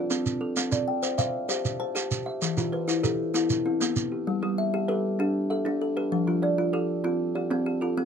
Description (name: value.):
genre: southern african traditional, mbira-style interlocking cycle.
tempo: 130 BPM (dotted quarters).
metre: 12/8.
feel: straight.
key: G mixolydian.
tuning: A4 = 437 Hz.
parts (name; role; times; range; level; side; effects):
kalimba; arpeggios; 0.0-8.1 s; E3 to G5; -26 LUFS; left 1 dB; none.
kalimba; arpeggios; 0.0-8.1 s; F3 to A5; -30 LUFS; right 2 dB; none.
shekere; percussion; 0.1-4.1 s; none; -30 LUFS; right 5 dB; none.
room: light reverb.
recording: none.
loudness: -24 LUFS.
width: side -7 dB against mid.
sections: 0.0-4.3 A section; 4.3-8.1 B section.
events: none.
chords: 0.0 F; 0.6 C; 2.4 Em; 4.3 G; 6.1 F.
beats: 0.10 | 0.57 1.03 1.49 1.96 | 2.42 2.88 3.35 3.81 | 4.27 4.73 5.20 5.66 | 6.12 6.58 7.05 7.51 | 7.97.